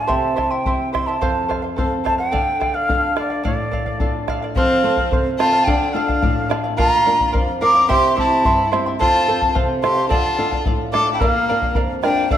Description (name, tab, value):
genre	andean folk, Andean ensemble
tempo	108 BPM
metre	2/4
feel	straight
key	D minor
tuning	A4 = 440 Hz
part	mellow quena	melody	0.0-12.4 s	D5 to D6	-19 LUFS	equal	none
part	charango	accompaniment	0.0-12.4 s	E4 to C6	-24 LUFS	right 3 dB	none
part	flamenco guitar	accompaniment	0.0-12.4 s	F2 to Bb4	-24 LUFS	left 1 dB	none
part	bombo	percussion	0.1-12.4 s	none	-23 LUFS	equal	none
part	clear violin	second line	4.6-12.4 s	Bb3 to Bb4	-24 LUFS	left 2 dB	none
room	wet recital hall reverb, RT60 1.6 s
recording	none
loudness	-16 LUFS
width	side -10 dB against mid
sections	0.0-4.6 A section; 4.6-12.4 B section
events	none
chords	0.1 C; 1.2 F; 2.3 Dm; 4.6 F; 5.7 Dm; 6.8 Bb; 7.9 C; 9.0 F; 10.1 Dm; 11.2 Bb